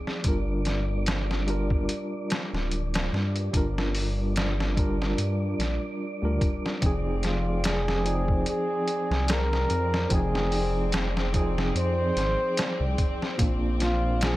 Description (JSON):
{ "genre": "trip hop", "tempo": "73 BPM", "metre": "4/4", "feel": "swing 55% on 16ths", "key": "F dorian", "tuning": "A4 = 440 Hz", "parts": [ { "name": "tine electric piano", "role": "accompaniment", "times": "0.0-14.4 s", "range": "Bb2 to Bb4", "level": "-31 LUFS", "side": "equal", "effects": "medium tremolo, tape echo" }, { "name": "wind-like tuned noise texture", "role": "texture", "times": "0.0-14.4 s", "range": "D5", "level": "-38 LUFS", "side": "right 1 dB", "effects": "built-in reverb" }, { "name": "trip hop sampler-style drum kit", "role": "drums", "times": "0.1-14.4 s", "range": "hi-hat, kick drum, snare drum", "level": "-28 LUFS", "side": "equal", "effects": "small room reverb" }, { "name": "dark detuned saw bass", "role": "bass", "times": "0.2-14.4 s", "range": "D1 to G2", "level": "-27 LUFS", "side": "equal", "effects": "none" }, { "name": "rich chamber string section", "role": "sustained chords", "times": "6.8-14.4 s", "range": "C4", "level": "-36 LUFS", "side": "left 3 dB", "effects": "none" }, { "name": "trumpet with bucket mute", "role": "melody", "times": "7.2-14.4 s", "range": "F4 to C5", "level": "-30 LUFS", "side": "equal", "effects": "vintage 12-bit sampler grit, tape echo" } ], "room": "little or no reverb", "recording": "none", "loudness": "-24 LUFS", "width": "side -17 dB against mid", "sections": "0.0-14.4 A section", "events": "none", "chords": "0.2 Gm7; 6.8 Fm7; 13.4 Bb" }